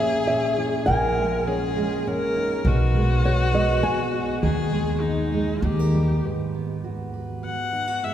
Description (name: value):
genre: acoustic folk-pop ballad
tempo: 101 BPM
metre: 3/4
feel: straight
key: G# minor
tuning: A4 = 440 Hz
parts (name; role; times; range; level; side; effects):
- flamenco guitar; melody; 0.0-5.6 s; C#5 to G#5; -27 LUFS; equal; none
- rich viola; second line; 0.0-8.1 s; D#4 to F#5; -26 LUFS; left 3 dB; none
- fingerpicked steel-string acoustic guitar; accompaniment; 0.0-8.1 s; G#2 to B4; -26 LUFS; right 2 dB; none
- upright bass; bass; 0.0-6.2 s; A#1 to D#2; -25 LUFS; equal; none
room: wet cathedral reverb, RT60 4.4 s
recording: recorded in a church or concert hall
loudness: -20 LUFS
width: side -10 dB against mid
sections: 0.0-6.2 A section; 6.2-8.1 B section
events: viola solo 6.2-8.1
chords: 0.0 A#m7b5; 0.9 D#7sus4/A#; 2.6 G#m7/B; 4.4 D#sus4; 5.6 D#; 6.2 G#m7